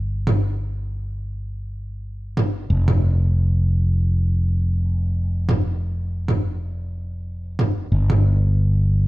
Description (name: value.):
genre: sunset chillout.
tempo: 92 BPM.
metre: 4/4.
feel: swing 56% on 16ths.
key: unclear.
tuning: A4 = 441 Hz.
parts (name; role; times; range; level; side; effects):
fretless electric bass; bass; 0.0-9.1 s; F1 to G1; -20 LUFS; equal; none.
electronic toms; drums; 0.3-8.2 s; none; -21 LUFS; right 1 dB; overdrive, gated reverb.
room: little or no reverb.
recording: bright 1980s-style digital production.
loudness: -18 LUFS.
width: side -18 dB against mid.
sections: 0.0-9.1 A section.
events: none.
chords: none.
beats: | 0.09 0.74 1.40 2.05 | 2.70 3.35 4.00 4.66 | 5.31 5.96 6.61 7.26 | 7.92 8.57.